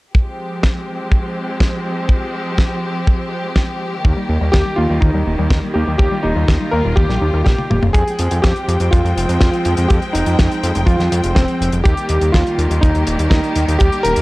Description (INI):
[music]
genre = italo disco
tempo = 123 BPM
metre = 4/4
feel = straight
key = F minor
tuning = A4 = 440 Hz
[part]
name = clear studio string section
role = sustained chords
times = 0.1-14.2 s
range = Eb3 to G5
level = -22 LUFS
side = equal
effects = none
[part]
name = kick drum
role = drums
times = 0.1-13.9 s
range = none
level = -14 LUFS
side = equal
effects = small room ambience
[part]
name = damped 70s drum kit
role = drums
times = 0.6-14.2 s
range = hi-hat, snare drum, toms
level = -22 LUFS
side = equal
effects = small room ambience
[part]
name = warbly dusty pluck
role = arpeggios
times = 4.0-7.9 s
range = Eb3 to Bb4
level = -24 LUFS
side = left 2 dB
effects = chorus, tape echo
[part]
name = fat analog bass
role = bass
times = 4.0-14.2 s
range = Eb1 to F2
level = -18 LUFS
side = equal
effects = none
[part]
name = warm electric grand piano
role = melody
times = 4.5-14.2 s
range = C4 to Bb4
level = -20 LUFS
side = equal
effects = analog delay
[sound]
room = little or no reverb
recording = dry, gritty hardware recording, cassette tape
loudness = -14 LUFS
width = side -20 dB against mid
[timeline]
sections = 0.1-7.9 A section; 7.9-14.2 B section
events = drum fill 7.5-7.9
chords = 0.1 Fmadd9; 4.0 Eb; 7.9 Fmadd9; 11.9 Eb